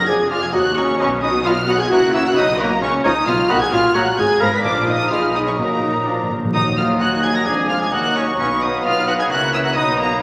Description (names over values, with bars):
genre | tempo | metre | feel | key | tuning
quick classical-period movement for symphony orchestra | 131 BPM | 2/4 | straight | Eb minor | A4 = 439 Hz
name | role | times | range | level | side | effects
dark studio violin section | melody | 0.0-10.2 s | Bb5 to Cb7 | -24 LUFS | equal | none
clear studio violin section | second line | 0.0-10.2 s | Bb4 to Cb6 | -32 LUFS | equal | none
mellow clarinet | second line | 0.0-10.2 s | Bb3 to Ab5 | -27 LUFS | equal | none
warm studio viola section | accompaniment | 0.0-10.2 s | F#3 to B4 | -29 LUFS | equal | none
mellow French horn section | sustained chords | 0.0-10.2 s | Gb3 to Cb5 | -25 LUFS | equal | none
rich studio cello section | bass | 0.0-10.2 s | Eb2 to Db3 | -30 LUFS | equal | none
rich studio double bass section | bass | 0.0-10.2 s | F1 to Eb2 | -33 LUFS | equal | none
clear oboe | second line | 0.1-10.2 s | B4 to F5 | -27 LUFS | equal | none
silver concert flute | second line | 0.1-10.2 s | Ab5 to B5 | -32 LUFS | equal | none
mellow bassoon | accompaniment | 0.1-10.2 s | Eb3 to Ab3 | -30 LUFS | equal | none
timpani | percussion | 4.6-7.2 s | Bb2 to Eb3 | -28 LUFS | equal | none
warm trumpet | stabs | 6.5-10.2 s | Bb3 to Bb4 | -25 LUFS | equal | none
room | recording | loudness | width
wet concert hall reverb, RT60 1.9 s | vinyl crackle | -18 LUFS | mono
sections
0.0-6.5 A section; 6.5-10.2 A section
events
timpani fill 6.1-6.5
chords
0.1 Ddim/F; 0.5 Ebm; 1.0 B; 1.9 Bbdim/Db; 2.4 B; 2.8 Bbm/Db; 3.3 Abm6; 3.7 Gb/Bb; 4.2 Fdim/Ab; 4.6 Bb; 5.1 Abm/Cb; 5.6 Ebm/Bb; 6.1 Bb; 6.5 Ebm; 7.5 Ddim/F; 7.9 Ebm; 8.4 B; 9.3 Bbdim/Db; 9.8 B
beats
| 0.08 0.54 | 1.00 1.46 | 1.91 2.37 | 2.82 3.27 | 3.72 4.17 | 4.63 5.10 | 5.58 6.07 | 6.54 7.00 | 7.46 7.93 | 8.39 8.85 | 9.30 9.76 | 10.21